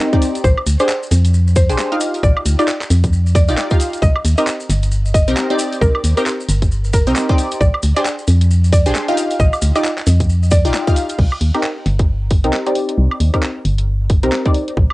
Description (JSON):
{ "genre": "UK garage, two-step garage", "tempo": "134 BPM", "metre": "4/4", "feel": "swing 60% on 16ths", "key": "C minor", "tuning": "A4 = 440 Hz", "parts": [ { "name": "punchy chord stab", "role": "stabs", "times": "0.0-14.8 s", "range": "C4 to F5", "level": "-19 LUFS", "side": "equal", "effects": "chorus, phaser, cassette tape, tape echo" }, { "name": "electronic kick drum", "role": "drums", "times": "0.1-14.9 s", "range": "none", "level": "-14 LUFS", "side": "equal", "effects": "small room ambience" }, { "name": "garage drum kit", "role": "drums", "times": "0.1-14.9 s", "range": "crash cymbal, handclaps, hi-hat, snare drum, woodblock", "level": "-24 LUFS", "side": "right 1 dB", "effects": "small room ambience" }, { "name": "maracas", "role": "percussion", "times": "0.2-11.2 s", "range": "none", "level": "-30 LUFS", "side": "left 1 dB", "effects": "none" }, { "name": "mallet-like synth pluck", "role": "melody", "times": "0.4-10.7 s", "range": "Bb4 to Eb5", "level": "-22 LUFS", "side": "equal", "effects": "chorus, cassette tape, tape echo" }, { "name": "organ-like FM bass", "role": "bass", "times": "0.4-14.9 s", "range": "G1 to F2", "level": "-14 LUFS", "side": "equal", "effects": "sidechain pumping" } ], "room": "little or no reverb", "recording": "home recording on cassette, nothing above 11.0 kHz", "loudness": "-13 LUFS", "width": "side -19 dB against mid", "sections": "0.0-11.2 A section; 11.2-14.9 B section", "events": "drop 0.0-11.2", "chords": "0.4 Bb13 (rootless); 2.0 Ebmaj9/Bb; 4.0 Cm7; 7.6 Bb13 (rootless); 9.2 Ebmaj9/Bb; 11.2 Cm7" }